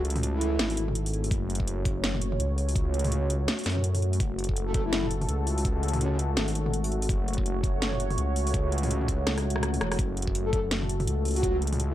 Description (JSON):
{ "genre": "half-time drum and bass", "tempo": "166 BPM", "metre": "4/4", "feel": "swing 59% on 16ths, half-time", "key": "F# minor", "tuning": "A4 = 440 Hz", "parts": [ { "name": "dark analog pad", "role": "sustained chords", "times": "0.0-11.9 s", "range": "A3 to C#5", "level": "-33 LUFS", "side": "left 1 dB", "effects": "chorus, sidechain pumping" }, { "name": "dark detuned saw bass", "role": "bass", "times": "0.0-11.9 s", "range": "E1 to F#2", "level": "-28 LUFS", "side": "equal", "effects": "none" }, { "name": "drum and bass drum kit", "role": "drums", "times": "0.0-11.9 s", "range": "hi-hat, rim click, snare drum, toms", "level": "-31 LUFS", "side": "equal", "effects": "none" }, { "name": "breathy flute-like synth lead", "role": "melody", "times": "0.3-0.8, 4.7-6.2, 10.5-11.9 s", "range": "C#4 to A4", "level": "-33 LUFS", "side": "equal", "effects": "analog chorus, tape echo" }, { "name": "electronic kick drum", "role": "drums", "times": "1.3-11.5 s", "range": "none", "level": "-28 LUFS", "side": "equal", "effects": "none" } ], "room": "digital ambience", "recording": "dry, gritty hardware recording, transformer saturation", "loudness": "-25 LUFS", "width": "side -13 dB against mid", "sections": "0.0-11.9 A section", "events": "drum fill 9.3-10.0", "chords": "0.0 F#m" }